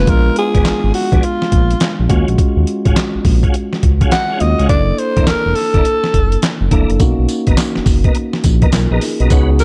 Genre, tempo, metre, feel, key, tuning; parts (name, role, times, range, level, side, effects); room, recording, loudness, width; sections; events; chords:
R&B, new jack swing; 104 BPM; 4/4; swing 64% on 16ths; A4 = 439 Hz
growling alto saxophone; melody; 0.0-9.6 s; F4 to Gb5; -20 LUFS; equal
mellow tine electric piano; accompaniment; 0.0-9.6 s; Ab3 to A#4; -22 LUFS; equal
smooth gliding synth bass; bass; 0.0-9.6 s; Fb1 to Eb2; -17 LUFS; equal
boom bap sampler-style drum kit; drums; 0.1-9.6 s; handclaps, hi-hat, kick drum, snare drum, tambourine; -17 LUFS; equal; vintage 12-bit sampler grit, gated reverb
tonewheel organ; stabs; 0.5-9.5 s; Cb4 to Cb5; -28 LUFS; equal; chorus vibrato, fast rotary speaker
digital ambience; -14 LUFS; mono
0.1-9.3 A section
0.1 Bb7b9; 2.1 Ebm11; 4.7 Gb7alt; 7.0 Bmaj7